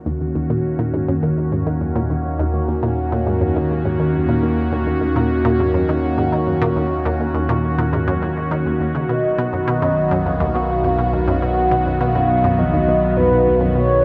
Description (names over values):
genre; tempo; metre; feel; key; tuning
ambient, sequencer-driven space music; 103 BPM; 4/4; straight; Eb minor; A4 = 440 Hz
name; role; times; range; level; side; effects
phased analog pad; sustained chords; 0.1-14.0 s; Eb3 to Ab4; -22 LUFS; equal; phaser, chorus
fat analog bass; bass; 0.0-14.0 s; B1 to Eb2; -26 LUFS; equal; none
resonant blip pluck; riff; 0.1-13.8 s; Eb2 to Eb3; -25 LUFS; equal; chorus, vintage 12-bit sampler grit, delay
mellow horn-like synth lead; melody; 9.1-14.0 s; B4 to F#5; -21 LUFS; equal; chorus, delay
room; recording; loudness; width
wet huge ambient reverb, RT60 7.7 s; none; -19 LUFS; mono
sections
0.0-14.0 A section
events
none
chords
0.0 Ebm7; 9.1 B